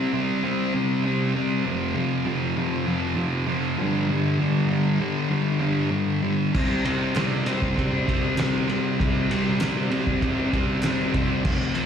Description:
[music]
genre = garage rock duo or trio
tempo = 98 BPM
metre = 4/4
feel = straight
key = unclear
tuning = A4 = 442 Hz
[part]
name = thick fuzz guitar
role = riff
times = 0.0-11.9 s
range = F2 to C4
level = -22 LUFS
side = equal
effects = distortion
[part]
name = cloth-damped thuddy drum kit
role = drums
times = 6.5-11.9 s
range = crash cymbal, kick drum, ride cymbal, snare drum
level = -26 LUFS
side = equal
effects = none
[part]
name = group handclap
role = percussion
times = 7.2-11.0 s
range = none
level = -40 LUFS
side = left 1 dB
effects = none
[sound]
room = moderate club reverb, RT60 0.5 s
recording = live gig heard through the venue's PA, recital hall reverb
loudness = -21 LUFS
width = side -8 dB against mid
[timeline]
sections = 0.0-11.9 A section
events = none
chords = 0.0 C5; 1.7 F5; 3.8 G5; 6.5 C5

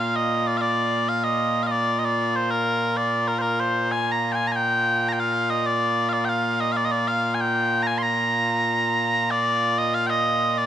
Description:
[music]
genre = scottish traditional, Scottish pipe music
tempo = 95 BPM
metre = 4/4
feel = straight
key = Bb major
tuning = A4 = 440 Hz
[part]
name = mellow small bagpipes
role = solo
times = 0.0-10.7 s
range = Bb2 to C6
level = -20 LUFS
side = equal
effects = none
[sound]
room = moderate spring reverb, RT60 2.8 s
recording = none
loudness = -20 LUFS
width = side -10 dB against mid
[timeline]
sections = 0.0-9.3 A section; 9.3-10.7 B section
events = none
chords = none

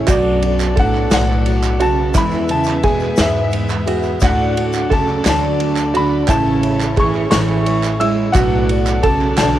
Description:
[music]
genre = indie folk with a building arrangement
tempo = 58 BPM (dotted quarters)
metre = 6/8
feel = straight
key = A major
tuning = A4 = 439 Hz
[part]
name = picked twelve-string acoustic guitar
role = accompaniment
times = 0.0-9.6 s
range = E2 to G#4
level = -24 LUFS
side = left 10 dB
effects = cassette tape
[part]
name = rich chamber string section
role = sustained chords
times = 0.0-9.6 s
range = E3 to E5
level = -26 LUFS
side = equal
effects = cassette tape
[part]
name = open-back banjo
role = arpeggios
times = 0.0-9.6 s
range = E4 to A4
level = -21 LUFS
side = right 6 dB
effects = cassette tape
[part]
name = upright bass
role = bass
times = 0.0-9.6 s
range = A1 to E2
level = -21 LUFS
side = left 1 dB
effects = none
[part]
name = clear upright piano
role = melody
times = 0.1-9.6 s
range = D5 to E6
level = -21 LUFS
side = left 2 dB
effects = cassette tape, tape echo
[part]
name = dark cello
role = second line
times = 0.1-9.6 s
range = F#2 to G#3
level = -20 LUFS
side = right 4 dB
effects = cassette tape, tape echo
[part]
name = unplugged drum kit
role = drums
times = 0.1-9.5 s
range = kick drum, ride cymbal, snare drum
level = -21 LUFS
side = left 1 dB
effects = none
[part]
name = group handclap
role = percussion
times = 0.1-9.6 s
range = none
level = -26 LUFS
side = right 8 dB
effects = none
[part]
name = tube shaker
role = percussion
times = 0.1-9.5 s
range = none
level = -34 LUFS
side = left 11 dB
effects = none
[sound]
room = light reverb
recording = home recording on cassette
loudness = -13 LUFS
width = side -12 dB against mid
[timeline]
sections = 0.0-9.6 A section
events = none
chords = 0.1 Bm7; 2.2 E; 4.2 D; 6.3 Amaj7; 8.4 Bm7

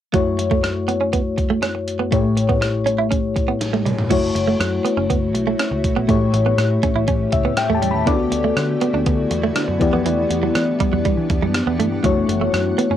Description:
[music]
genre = 1980s-style pop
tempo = 121 BPM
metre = 4/4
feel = straight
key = unclear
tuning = A4 = 440 Hz
[part]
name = mellow FM electric piano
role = accompaniment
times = 0.1-13.0 s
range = A1 to B5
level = -20 LUFS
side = left 4 dB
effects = chorus, cassette tape
[part]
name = direct-recorded clean electric guitar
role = riff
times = 0.1-13.0 s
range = E3 to E4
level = -23 LUFS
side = right 7 dB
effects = analog chorus, cassette tape, analog delay
[part]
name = gated 80s digital drum machine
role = drums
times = 0.1-12.9 s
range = crash cymbal, hi-hat, kick drum, rim click, snare drum, toms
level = -23 LUFS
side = right 1 dB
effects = gated reverb, gated reverb snare, overdrive, cassette tape
[part]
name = granular cloud pad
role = sustained chords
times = 5.0-13.0 s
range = D3 to F#5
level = -26 LUFS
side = right 2 dB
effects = built-in reverb, cassette tape
[part]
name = vintage muted picked electric bass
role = bass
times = 4.1-13.0 s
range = F#1 to E3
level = -24 LUFS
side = right 1 dB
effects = none
[sound]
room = wet booth ambience, RT60 0.2 s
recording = home recording on cassette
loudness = -16 LUFS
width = side -10 dB against mid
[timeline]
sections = 0.1-4.1 A section; 4.1-13.0 B section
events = drum fill 3.6-4.1; FM electric piano fill 7.1-8.1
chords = 0.1 F#m7; 2.1 A7; 4.1 F#m7; 6.1 A7; 8.1 D6; 9.8 Em7; 12.0 F#m7

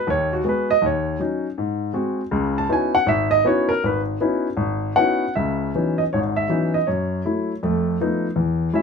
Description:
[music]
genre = solo jazz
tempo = 160 BPM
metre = 4/4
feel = swing 64% on 8ths, rubato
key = C# minor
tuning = A4 = 440 Hz
[part]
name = warm grand piano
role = solo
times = 0.0-8.8 s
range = G#1 to A5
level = -19 LUFS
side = left 1 dB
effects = none
[sound]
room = moderate studio ambience, RT60 0.5 s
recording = minimal, uncompressed stereo recording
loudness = -19 LUFS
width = side -5 dB against mid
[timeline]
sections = 0.0-5.4 A section; 5.4-8.8 B section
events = grand piano solo 0.0-5.4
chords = 0.0 G#m7; 0.8 D#m7; 1.6 G#7; 2.3 C#m11; 6.9 F#m7; 7.6 F7#11

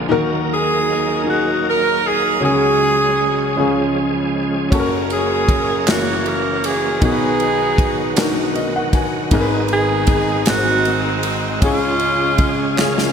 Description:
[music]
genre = slow gospel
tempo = 52 BPM (dotted quarters)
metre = 6/8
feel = straight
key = F# major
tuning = A4 = 440 Hz
[part]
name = warm concert grand piano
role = accompaniment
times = 0.0-13.1 s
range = F#1 to A#5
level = -20 LUFS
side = left 2 dB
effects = analog chorus
[part]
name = bright tonewheel organ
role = sustained chords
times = 0.0-13.1 s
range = C#3 to A#4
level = -24 LUFS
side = right 3 dB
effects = slow rotary speaker, chorus vibrato
[part]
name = bright saxophone section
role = melody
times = 0.5-13.1 s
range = G#3 to A#4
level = -18 LUFS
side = right 1 dB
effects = ping-pong delay
[part]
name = natural country drum kit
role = drums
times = 4.7-13.1 s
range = kick drum, ride cymbal, snare drum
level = -20 LUFS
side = equal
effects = none
[part]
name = group handclap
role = percussion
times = 5.9-13.1 s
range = none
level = -28 LUFS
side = right 4 dB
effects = none
[sound]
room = wet lush hall reverb, RT60 2.8 s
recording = bright 1980s-style digital production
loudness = -15 LUFS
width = side -7 dB against mid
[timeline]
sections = 0.0-13.1 A section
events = grand piano fill 8.2-9.3; drum fill 12.8-13.1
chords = 0.1 D#m; 2.4 C#sus4; 3.6 C#; 4.7 F#; 5.9 F#7; 7.0 B; 9.3 G#m; 10.5 G#7; 11.6 C#

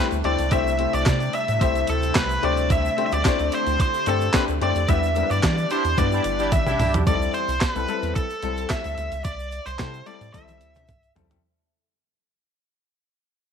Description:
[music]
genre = early-eighties boogie funk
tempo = 110 BPM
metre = 4/4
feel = straight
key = unclear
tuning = A4 = 440 Hz
[part]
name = nasal lead guitar with a parked wah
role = melody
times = 0.0-11.1 s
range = A4 to E5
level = -25 LUFS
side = right 1 dB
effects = overdrive, slapback echo
[part]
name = clear baby grand piano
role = accompaniment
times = 0.0-11.4 s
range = G3 to C5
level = -27 LUFS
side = left 13 dB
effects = none
[part]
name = evolving wavetable pad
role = sustained chords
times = 0.0-7.0 s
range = C3 to F#5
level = -32 LUFS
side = right 1 dB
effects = ensemble chorus, built-in reverb
[part]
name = rubbery square bass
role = bass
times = 0.1-11.4 s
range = G1 to E3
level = -26 LUFS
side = right 1 dB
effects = none
[part]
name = crisp 8-bit digital drum machine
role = drums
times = 0.1-11.4 s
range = handclaps, hi-hat, kick drum, snare drum, toms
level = -24 LUFS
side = right 1 dB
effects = none
[part]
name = egg shaker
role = percussion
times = 0.1-11.4 s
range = none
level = -45 LUFS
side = right 22 dB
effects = none
[part]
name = analog synth brass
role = second line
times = 5.7-7.0 s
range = D4 to G4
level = -28 LUFS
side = right 1 dB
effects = chorus
[sound]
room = light reverb, digital ambience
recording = 1960s-style stereo with parts hard left and right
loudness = -20 LUFS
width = side -7 dB against mid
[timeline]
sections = 0.0-7.1 A section; 7.1-11.4 B section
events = band accent 4.9-7.1; drum fill 6.5-7.1, 10.3-11.4; fade-out 7.1-11.4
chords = 0.0 C6; 2.4 D7sus4; 4.9 Em7; 7.1 C6

